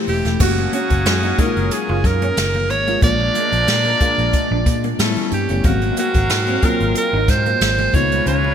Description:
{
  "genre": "polished 1980s jazz-funk pop",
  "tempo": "92 BPM",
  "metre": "4/4",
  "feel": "swing 54% on 16ths",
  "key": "F# major",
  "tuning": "A4 = 440 Hz",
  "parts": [
    { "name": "FM electric piano with soft pad layer", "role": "accompaniment", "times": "0.0-8.5 s", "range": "F#3 to E#5", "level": "-24 LUFS", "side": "left 4 dB", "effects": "wide subtle chorus" },
    { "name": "chorused pulse-width pad", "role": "sustained chords", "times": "0.0-8.5 s", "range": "B2 to E#5", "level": "-32 LUFS", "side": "right 1 dB", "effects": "none" },
    { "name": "edgy alto saxophone", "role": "melody", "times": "0.1-8.5 s", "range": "F#4 to D5", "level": "-20 LUFS", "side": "right 2 dB", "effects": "none" },
    { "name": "vintage muted fingered electric bass", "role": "bass", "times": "0.1-8.5 s", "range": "E1 to A#2", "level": "-21 LUFS", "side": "equal", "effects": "none" },
    { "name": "jazz brush drum kit", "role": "drums", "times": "0.1-8.4 s", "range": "crash cymbal, hi-hat, kick drum, snare drum", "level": "-20 LUFS", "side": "equal", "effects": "gated reverb" },
    { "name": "congas", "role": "percussion", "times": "0.1-8.5 s", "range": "none", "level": "-35 LUFS", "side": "left 5 dB", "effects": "none" },
    { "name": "semi-hollow electric guitar", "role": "riff", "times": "0.3-8.5 s", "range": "G#3 to F#4", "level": "-28 LUFS", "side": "right 2 dB", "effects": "analog chorus" },
    { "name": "warm horn section", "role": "second line", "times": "0.4-8.5 s", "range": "E3 to E#5", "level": "-28 LUFS", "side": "left 3 dB", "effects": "none" }
  ],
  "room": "light reverb, studio ambience",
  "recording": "bright 1980s-style digital production",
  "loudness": "-15 LUFS",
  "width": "side -8 dB against mid",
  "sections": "0.4-8.5 A section",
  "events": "band accent 0.0-0.4",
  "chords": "0.4 F#maj9; 3.0 A#7; 5.0 A9; 5.6 G#13; 7.9 C#9"
}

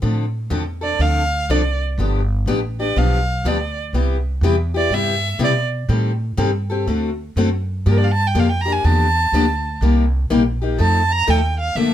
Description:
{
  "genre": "acoustic string swing (jazz manouche)",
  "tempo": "123 BPM",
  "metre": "4/4",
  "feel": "swing 64% on 8ths",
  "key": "D minor",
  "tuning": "A4 = 445 Hz",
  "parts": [
    { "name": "picked steel-string acoustic guitar", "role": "accompaniment", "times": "0.0-11.9 s", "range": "C3 to A4", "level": "-20 LUFS", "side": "left 4 dB", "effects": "none" },
    { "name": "upright bass", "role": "bass", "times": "0.0-11.9 s", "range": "G1 to B2", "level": "-19 LUFS", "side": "right 1 dB", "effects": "none" },
    { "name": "rich violin", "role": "melody", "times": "0.8-11.9 s", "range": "Bb4 to Bb5", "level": "-21 LUFS", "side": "right 2 dB", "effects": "none" }
  ],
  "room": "light reverb",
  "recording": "close, detailed microphones",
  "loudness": "-16 LUFS",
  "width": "side -11 dB against mid",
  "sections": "0.0-11.9 A section",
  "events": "violin solo 0.0-11.9",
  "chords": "0.0 Dm9; 2.0 G7; 3.9 Cmaj7; 5.9 Am7b5; 6.9 D7; 7.9 Gm9; 9.8 Cm7; 10.8 F7"
}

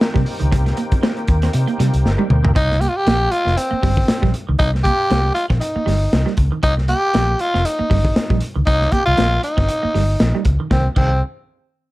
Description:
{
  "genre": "funk",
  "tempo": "118 BPM",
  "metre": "4/4",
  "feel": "swing 56% on 16ths",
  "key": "C minor",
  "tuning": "A4 = 440 Hz",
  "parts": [
    { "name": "overdriven tonewheel organ", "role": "sustained chords", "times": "0.0-2.5 s", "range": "Eb3 to G4", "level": "-26 LUFS", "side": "left 1 dB", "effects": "chorus vibrato, wide subtle chorus" },
    { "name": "crunchy breakbeat drum kit", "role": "drums", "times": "0.0-11.1 s", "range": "crash cymbal, hi-hat, kick drum, snare drum, toms", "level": "-19 LUFS", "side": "equal", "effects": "none" },
    { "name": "semi-hollow electric guitar", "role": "riff", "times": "0.1-11.1 s", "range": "Eb3 to C4", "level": "-26 LUFS", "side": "right 6 dB", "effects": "phaser" },
    { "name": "vintage muted fingered electric bass", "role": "bass", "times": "0.2-11.2 s", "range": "F1 to C3", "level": "-18 LUFS", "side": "equal", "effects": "none" },
    { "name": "growling tenor saxophone", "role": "melody", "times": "2.6-11.2 s", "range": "C4 to G4", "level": "-19 LUFS", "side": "equal", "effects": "none" }
  ],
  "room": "little or no reverb",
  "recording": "none",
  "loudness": "-15 LUFS",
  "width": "side -18 dB against mid",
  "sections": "0.0-2.6 A section; 2.6-10.7 B section; 10.7-11.9 C section",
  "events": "drum fill 2.1-2.6",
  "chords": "0.0 Cm7; 10.7 Cm"
}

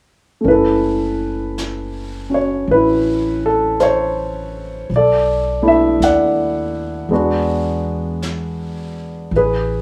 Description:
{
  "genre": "jazz ballad",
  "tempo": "54 BPM",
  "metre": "4/4",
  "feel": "swing 66% on 8ths",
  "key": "F# minor",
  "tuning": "A4 = 440 Hz",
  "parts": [
    { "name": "warm grand piano", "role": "accompaniment", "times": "0.4-9.8 s", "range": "G#3 to F#5", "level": "-18 LUFS", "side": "equal", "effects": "none" },
    { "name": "upright bass", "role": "bass", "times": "0.4-9.8 s", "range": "F#1 to E2", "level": "-27 LUFS", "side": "equal", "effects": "none" },
    { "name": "jazz brush drum kit", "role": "drums", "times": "0.5-9.8 s", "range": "brushed snare drum, hi-hat, snare drum", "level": "-38 LUFS", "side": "equal", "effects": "none" }
  ],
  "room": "moderate small room reverb, RT60 0.6 s",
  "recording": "rough home demo mix, studio ambience",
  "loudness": "-17 LUFS",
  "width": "mono",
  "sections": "0.5-9.8 A section",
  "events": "none",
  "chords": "0.5 F#m7; 4.9 Bm7; 7.1 E7; 9.3 Amaj7sus2"
}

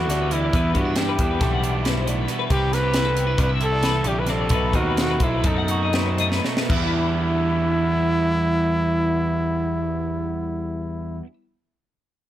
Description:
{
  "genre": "math rock and midwest emo",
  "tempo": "232-274 BPM (eighths)",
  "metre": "9/8",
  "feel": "straight",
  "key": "E minor",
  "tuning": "A4 = 440 Hz",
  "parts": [
    { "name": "breathy trumpet", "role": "melody", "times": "0.0-11.2 s", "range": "D#4 to B4", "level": "-25 LUFS", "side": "equal", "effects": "slapback echo" },
    { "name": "twelve-string electric guitar", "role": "accompaniment", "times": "0.0-11.3 s", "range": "E2 to G4", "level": "-29 LUFS", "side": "right 6 dB", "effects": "none" },
    { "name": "twelve-string electric guitar", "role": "arpeggios", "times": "0.0-11.3 s", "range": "E4 to F#5", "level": "-30 LUFS", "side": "left 8 dB", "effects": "tremolo, slapback echo" },
    { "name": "overdriven electric guitar", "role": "riff", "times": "0.0-11.3 s", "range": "B2 to E4", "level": "-30 LUFS", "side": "equal", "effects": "none" },
    { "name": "growling picked electric bass", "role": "bass", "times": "0.0-11.2 s", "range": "A#1 to G2", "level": "-24 LUFS", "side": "equal", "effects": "overdrive" },
    { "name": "crisp fusion drum kit", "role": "drums", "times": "0.1-6.8 s", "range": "crash cymbal, hi-hat, kick drum, snare drum", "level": "-25 LUFS", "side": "equal", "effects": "none" }
  ],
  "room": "little or no reverb",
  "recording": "none",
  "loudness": "-19 LUFS",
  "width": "side -12 dB against mid",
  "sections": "0.0-6.7 A section; 6.7-11.4 B section",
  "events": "slowing down 3.0-6.7; drum fill 6.3-6.7",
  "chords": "0.0 Bm7; 2.5 Cmaj9; 4.5 B7b9; 6.7 Em7"
}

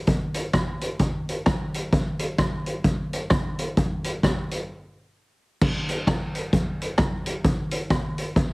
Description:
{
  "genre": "ska",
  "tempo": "130 BPM",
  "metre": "4/4",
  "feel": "swing 60% on 8ths",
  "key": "none",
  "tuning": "none",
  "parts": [
    { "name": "street-band drum kit", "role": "drums", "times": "0.1-8.5 s", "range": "crash cymbal, hi-hat, kick drum, rim click", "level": "-22 LUFS", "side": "equal", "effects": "none" }
  ],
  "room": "little or no reverb",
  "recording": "heavily compressed radio sound, multiband compression",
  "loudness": "-22 LUFS",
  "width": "side -28 dB against mid",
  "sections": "0.0-5.6 A section; 5.6-8.5 B section",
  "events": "break 4.7-5.6",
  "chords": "none"
}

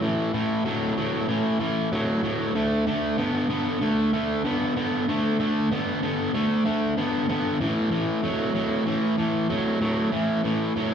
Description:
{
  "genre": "rock",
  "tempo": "95 BPM",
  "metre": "4/4",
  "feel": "straight",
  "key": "unclear",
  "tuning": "A4 = 441 Hz",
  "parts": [
    { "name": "distorted electric guitar", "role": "solo", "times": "0.0-10.9 s", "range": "A2 to B3", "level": "-22 LUFS", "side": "equal", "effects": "distortion" }
  ],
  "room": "wet large studio reverb, RT60 1.3 s",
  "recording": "band playing live in one room",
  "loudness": "-22 LUFS",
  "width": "side -8 dB against mid",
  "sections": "0.0-10.9 A section",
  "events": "none",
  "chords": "0.0 A5; 2.6 D5; 7.6 A5"
}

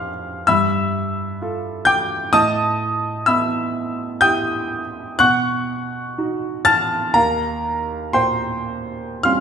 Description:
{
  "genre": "classical, impressionist solo piano",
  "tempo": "52-65 BPM",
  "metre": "5/4",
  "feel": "rubato",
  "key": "unclear",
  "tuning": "A4 = 440 Hz",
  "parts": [
    { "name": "clear concert grand piano", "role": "solo", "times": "0.0-9.4 s", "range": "Eb2 to A6", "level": "-17 LUFS", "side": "equal", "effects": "none" }
  ],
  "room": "moderate recital hall reverb, RT60 1.4 s",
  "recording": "none",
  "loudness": "-17 LUFS",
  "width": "side -7 dB against mid",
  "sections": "0.0-9.4 A section",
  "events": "none",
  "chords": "0.5 G9; 2.3 Asus2; 5.2 Cb9; 7.2 Eb69"
}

